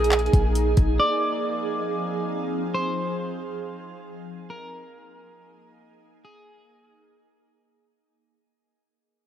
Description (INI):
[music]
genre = hip hop, atmospheric cloud-rap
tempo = free time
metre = none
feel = none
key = unclear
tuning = A4 = 442 Hz
[part]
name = electric guitar at the edge of break-up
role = melody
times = 0.0-7.5 s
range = Ab4 to D5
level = -28 LUFS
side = left 1 dB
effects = tape echo
[part]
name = ethereal airy pad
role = sustained chords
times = 0.0-8.0 s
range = F3 to Ab4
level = -28 LUFS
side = right 3 dB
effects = ensemble chorus, built-in reverb, phaser, sidechain pumping
[part]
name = warm 808-style bass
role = bass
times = 0.0-1.0 s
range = Bb1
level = -22 LUFS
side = equal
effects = none
[part]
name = trap drum kit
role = drums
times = 0.0-0.9 s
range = handclaps, hi-hat, kick drum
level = -22 LUFS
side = equal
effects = none
[part]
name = drifting glass-harmonics texture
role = texture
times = 0.0-8.0 s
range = Bb3 to Ab5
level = -40 LUFS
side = right 2 dB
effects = chorus, built-in reverb
[sound]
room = moderate huge ambient reverb, RT60 4.5 s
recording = none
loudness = -22 LUFS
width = side -10 dB against mid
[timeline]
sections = 0.0-8.0 A section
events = fade-out 0.0-8.0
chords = 0.0 Bb7sus4; 1.0 Fm7; 4.5 Bb7sus4